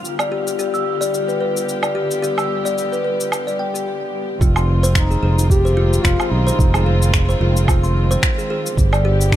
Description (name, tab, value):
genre	organic downtempo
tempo	110 BPM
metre	4/4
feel	swing 55% on 16ths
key	unclear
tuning	A4 = 440 Hz
part	dark studio string section	sustained chords	0.0-9.4 s	D3 to G4	-25 LUFS	left 1 dB	sidechain pumping
part	electronic shaker, woodblock and finger snaps	drums	0.0-9.4 s	none	-23 LUFS	equal	overdrive
part	wind-like tuned noise texture	texture	0.0-3.9 s	F4 to F5	-32 LUFS	left 3 dB	built-in reverb
part	kalimba	arpeggios	0.2-9.4 s	F4 to E6	-22 LUFS	left 1 dB	tape echo
part	fretless electric bass	bass	4.4-9.4 s	F1 to B1	-16 LUFS	right 1 dB	tube saturation
part	electronic kick drum	drums	4.4-9.4 s	none	-17 LUFS	right 1 dB	overdrive
part	dark duduk	melody	5.0-9.4 s	D4 to G4	-25 LUFS	left 1 dB	tape echo
room	light reverb, digital ambience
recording	none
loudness	-15 LUFS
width	side -12 dB against mid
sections	0.0-4.4 A section; 4.4-9.4 B section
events	break 3.9-4.4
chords	0.0 G; 4.4 Fm7; 8.8 G